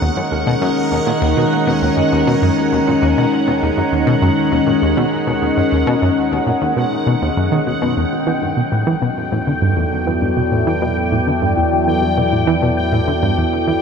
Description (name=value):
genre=ambient, sequencer-driven space music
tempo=100 BPM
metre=4/4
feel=straight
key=E minor from 8.0 s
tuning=A4 = 440 Hz
part: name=evolving wavetable pad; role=sustained chords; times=0.0-13.8 s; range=D#3 to D5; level=-17 LUFS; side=left 1 dB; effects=chorus, built-in reverb
part: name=tight sequenced synth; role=riff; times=0.0-13.7 s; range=D#2 to E3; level=-18 LUFS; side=equal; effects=chorus, ping-pong delay
part: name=bubbling stepped-filter texture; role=texture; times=0.0-13.8 s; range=F#5 to G5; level=-23 LUFS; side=left 1 dB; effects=chorus, built-in reverb
part: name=analog drone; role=bass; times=9.2-13.8 s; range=E2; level=-24 LUFS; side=equal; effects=chorus
room=wet huge ambient reverb, RT60 7.9 s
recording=none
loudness=-14 LUFS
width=side -6 dB against mid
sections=0.0-8.0 A section; 8.0-13.8 B section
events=none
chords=0.0 B; 8.0 Em7